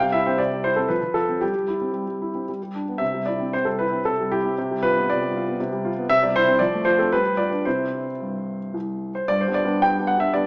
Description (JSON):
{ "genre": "classical-period piano sonatina", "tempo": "116 BPM", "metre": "3/4", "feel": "rubato", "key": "C major", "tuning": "A4 = 440 Hz", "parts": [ { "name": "warm grand piano", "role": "solo", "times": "0.0-10.5 s", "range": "C2 to G5", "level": "-20 LUFS", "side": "equal", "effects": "none" } ], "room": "moderate recital hall reverb, RT60 1.8 s", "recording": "small speaker sound", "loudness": "-20 LUFS", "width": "side -31 dB against mid", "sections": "0.0-9.3 A section; 9.3-10.5 B section", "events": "none", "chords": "0.0 C; 0.9 F; 1.4 C/G; 2.5 G; 3.0 C; 4.6 G7/C; 6.1 C; 6.6 F; 7.1 G7; 7.7 C; 9.3 G" }